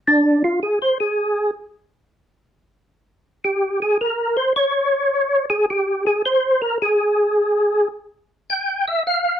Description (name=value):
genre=jazz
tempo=107 BPM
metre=4/4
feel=swing 69% on 8ths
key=unclear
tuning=A4 = 441 Hz
part: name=percussive tonewheel organ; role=solo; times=0.1-9.4 s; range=D4 to G5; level=-17 LUFS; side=equal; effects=slow rotary speaker, chorus vibrato
room=moderate studio reverb, RT60 0.6 s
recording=none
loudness=-17 LUFS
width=side -9 dB against mid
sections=0.0-9.4 A section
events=tonewheel organ solo 0.0-9.4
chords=none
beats=| 0.02 0.59 1.15 1.71 | 2.28 2.84 3.40 3.96 | 4.53 5.09 5.65 6.21 | 6.78 7.34 7.90 8.46 | 9.02